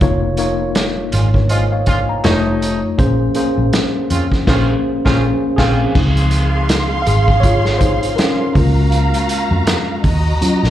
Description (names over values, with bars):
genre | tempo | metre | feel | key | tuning
lush 1970s-style soul | 81 BPM | 4/4 | swing 58% on 16ths | unclear | A4 = 440 Hz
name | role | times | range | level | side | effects
tine electric piano | accompaniment | 0.0-10.7 s | F3 to Bb5 | -18 LUFS | left 2 dB | overdrive, fast stereo tremolo, slapback echo
vintage muted fingered electric bass | bass | 0.0-10.7 s | F1 to F2 | -16 LUFS | equal | none
vintage drum kit | drums | 0.0-10.7 s | crash cymbal, hi-hat, kick drum, snare drum | -18 LUFS | right 1 dB | none
clear horn section | stabs | 1.1-5.8 s | Bb2 to F4 | -23 LUFS | right 3 dB | slapback echo
warm studio string section | second line | 5.9-10.7 s | Gb4 to C6 | -21 LUFS | right 1 dB | slapback echo
room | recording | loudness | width
light reverb | live gig heard through the venue's PA, club reverb | -13 LUFS | side -12 dB against mid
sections
0.0-6.0 A section; 6.0-10.7 B section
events
band accent 4.5-6.0; tine electric piano solo 6.0-10.7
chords
0.0 Db69/F; 2.2 F7b13; 3.0 Bbm9; 6.0 Dbmaj7; 8.6 Gbmaj7/Db; 10.0 Ebm7